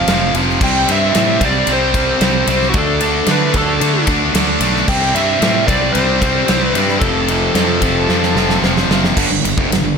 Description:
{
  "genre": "hard rock",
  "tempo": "112 BPM",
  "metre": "4/4",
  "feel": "straight",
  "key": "unclear",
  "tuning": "A4 = 440 Hz",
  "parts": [
    { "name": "biting lead guitar", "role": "melody", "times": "0.0-8.6 s", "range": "F#4 to G5", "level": "-19 LUFS", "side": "equal", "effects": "overdrive" },
    { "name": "sweeping resonant pad", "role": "sustained chords", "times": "0.0-10.0 s", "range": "F3 to G5", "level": "-29 LUFS", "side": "left 1 dB", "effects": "none" },
    { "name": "high-gain distorted guitar", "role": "riff", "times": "0.0-10.0 s", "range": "F2 to D4", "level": "-19 LUFS", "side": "left 17 dB", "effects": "distortion" },
    { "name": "high-gain distorted guitar", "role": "riff", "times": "0.0-10.0 s", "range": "F2 to D4", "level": "-18 LUFS", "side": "right 16 dB", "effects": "distortion" },
    { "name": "fuzz fingered electric bass", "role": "bass", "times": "0.0-10.0 s", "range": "F1 to D3", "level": "-20 LUFS", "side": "equal", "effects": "overdrive" },
    { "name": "big rock drum kit", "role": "drums", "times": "0.1-9.8 s", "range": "crash cymbal, kick drum, ride cymbal, snare drum", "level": "-18 LUFS", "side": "equal", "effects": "none" }
  ],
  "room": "light reverb",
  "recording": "none",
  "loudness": "-12 LUFS",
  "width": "side -6 dB against mid",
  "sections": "0.0-9.2 A section",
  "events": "drum fill 8.1-9.2",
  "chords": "0.0 F5; 0.6 C; 2.8 D5; 4.9 C; 7.0 F; 9.2 G5"
}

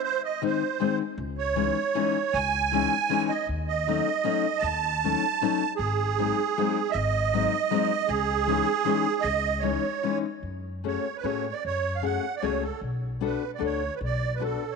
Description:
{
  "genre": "musette waltz",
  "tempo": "155 BPM",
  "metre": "3/4",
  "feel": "rubato",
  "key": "C# harmonic minor, F# minor from 10.4 s",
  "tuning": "A4 = 440 Hz",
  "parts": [
    { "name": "musette accordion", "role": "melody", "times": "0.0-14.8 s", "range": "G#4 to A5", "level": "-26 LUFS", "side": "right 8 dB", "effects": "none" },
    { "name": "fingerpicked steel-string acoustic guitar", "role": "accompaniment", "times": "0.4-14.6 s", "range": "D#3 to A4", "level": "-29 LUFS", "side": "left 12 dB", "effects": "none" },
    { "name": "upright bass", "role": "bass", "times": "1.2-14.5 s", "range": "G#1 to A2", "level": "-31 LUFS", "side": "left 1 dB", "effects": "none" }
  ],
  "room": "moderate echo chamber reverb, RT60 2.2 s",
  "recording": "1960s-style stereo with parts hard left and right, nothing above 11.0 kHz",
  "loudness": "-24 LUFS",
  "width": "side -4 dB against mid",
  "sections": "0.0-10.4 A section; 10.4-14.8 B section",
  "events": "none",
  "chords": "0.0 G#; 1.2 C#madd9; 3.5 D#m7b5; 5.8 G#7; 8.1 C#madd9; 10.4 F#madd9; 12.8 Bm7"
}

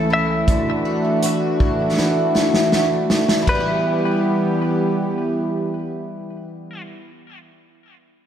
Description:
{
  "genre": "dream pop",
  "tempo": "80 BPM",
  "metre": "4/4",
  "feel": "straight",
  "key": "E dorian",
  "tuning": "A4 = 440 Hz",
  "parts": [
    { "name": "semi-hollow electric guitar", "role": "melody", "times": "0.0-6.8 s", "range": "A4 to E5", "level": "-26 LUFS", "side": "left 2 dB", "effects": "digital delay" },
    { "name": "warm analog pad", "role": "sustained chords", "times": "0.0-6.8 s", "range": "C#2 to A4", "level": "-21 LUFS", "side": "equal", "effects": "chorus" },
    { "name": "picked twelve-string acoustic guitar", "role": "arpeggios", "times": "0.0-7.1 s", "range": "C#3 to F#4", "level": "-23 LUFS", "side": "equal", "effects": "analog chorus, digital delay" },
    { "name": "vintage drum kit", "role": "drums", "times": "0.5-3.6 s", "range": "hi-hat, kick drum, ride cymbal, snare drum", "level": "-21 LUFS", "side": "equal", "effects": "none" }
  ],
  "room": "moderate concert hall reverb, RT60 2.4 s",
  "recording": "none",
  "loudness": "-17 LUFS",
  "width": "side -9 dB against mid",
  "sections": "0.0-3.5 A section; 3.5-6.5 B section",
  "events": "drum fill 2.0-3.5",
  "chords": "0.5 Dadd9; 3.5 Em"
}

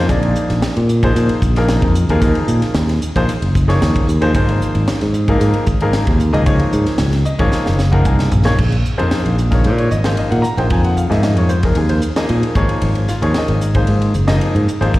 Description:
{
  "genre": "electric jazz fusion",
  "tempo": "113 BPM",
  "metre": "4/4",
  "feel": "straight",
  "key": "Bb minor from 8.6 s",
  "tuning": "A4 = 440 Hz",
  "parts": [
    { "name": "clear baby grand piano", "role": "accompaniment", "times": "0.0-14.9 s", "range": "F3 to Bb5", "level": "-19 LUFS", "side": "left 1 dB", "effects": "slapback echo" },
    { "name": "modern bright fingered electric bass", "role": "bass", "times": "0.0-15.0 s", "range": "Gb1 to Bb2", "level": "-15 LUFS", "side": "equal", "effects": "none" },
    { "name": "crisp fusion drum kit", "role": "drums", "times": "0.1-15.0 s", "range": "crash cymbal, hi-hat, kick drum, ride cymbal, snare drum, toms", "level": "-20 LUFS", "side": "equal", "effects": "none" }
  ],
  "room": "small room ambience",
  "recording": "live gig heard through the venue's PA, recital hall reverb, vinyl crackle",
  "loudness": "-13 LUFS",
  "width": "side -17 dB against mid",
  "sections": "0.0-8.6 A section; 8.6-15.0 B section",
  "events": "grand piano fill 7.0-8.6; drum fill 7.5-8.6",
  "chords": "0.0 Bb9sus4; 3.3 Ab9sus4; 8.6 Bb9sus4; 12.6 Absus4"
}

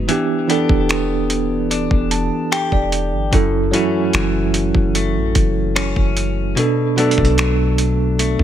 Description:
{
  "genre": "contemporary R&B",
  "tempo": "74 BPM",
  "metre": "4/4",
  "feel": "straight",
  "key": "unclear",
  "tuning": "A4 = 442 Hz",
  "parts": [
    { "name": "bell-like tine electric piano", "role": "accompaniment", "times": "0.0-8.4 s", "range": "B2 to A5", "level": "-18 LUFS", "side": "right 4 dB", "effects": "medium stereo tremolo" },
    { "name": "direct-recorded clean electric guitar", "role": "arpeggios", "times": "0.0-8.4 s", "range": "F#2 to G4", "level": "-23 LUFS", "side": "left 8 dB", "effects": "wide subtle chorus, digital delay" },
    { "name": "soft 808-style bass", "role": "bass", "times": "0.0-8.4 s", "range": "E1 to B1", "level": "-21 LUFS", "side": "equal", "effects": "none" },
    { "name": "dusty soul sampler-style drum kit", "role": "drums", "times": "0.1-8.4 s", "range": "finger snaps, hi-hat, kick drum", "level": "-19 LUFS", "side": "equal", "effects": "overdrive" }
  ],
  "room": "digital ambience",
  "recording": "none",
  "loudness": "-15 LUFS",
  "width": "side -10 dB against mid",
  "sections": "0.0-8.4 A section",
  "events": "tine electric piano fill 1.7-3.3",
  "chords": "0.1 Em7; 3.3 F#m7; 6.6 Bm7"
}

